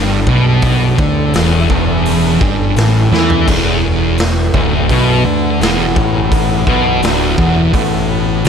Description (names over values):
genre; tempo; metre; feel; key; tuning
stoner and doom metal; 84 BPM; 4/4; straight; unclear; A4 = 440 Hz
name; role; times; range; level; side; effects
overtone-sweeping drone; sustained chords; 0.0-8.5 s; E3 to A4; -22 LUFS; right 1 dB; chorus, built-in reverb
thick fuzz guitar; riff; 0.0-8.5 s; D2 to E3; -15 LUFS; left 7 dB; distortion
thick fuzz guitar; riff; 0.0-8.5 s; D2 to E3; -16 LUFS; right 8 dB; distortion
growling fingered electric bass; bass; 0.0-8.5 s; D1 to E2; -18 LUFS; equal; overdrive
raw garage drum kit; drums; 0.3-8.5 s; crash cymbal, hi-hat, kick drum, snare drum, toms; -17 LUFS; equal; none
room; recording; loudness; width
moderate large studio reverb, RT60 1.1 s, studio reverb; none; -10 LUFS; side -7 dB against mid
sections
0.0-8.5 A section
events
drum fill 3.1-3.5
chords
0.0 G5; 3.5 E5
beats
| 0.62 1.33 2.04 2.76 | 3.47 4.18 4.89 5.60 | 6.32 7.03 7.74 8.45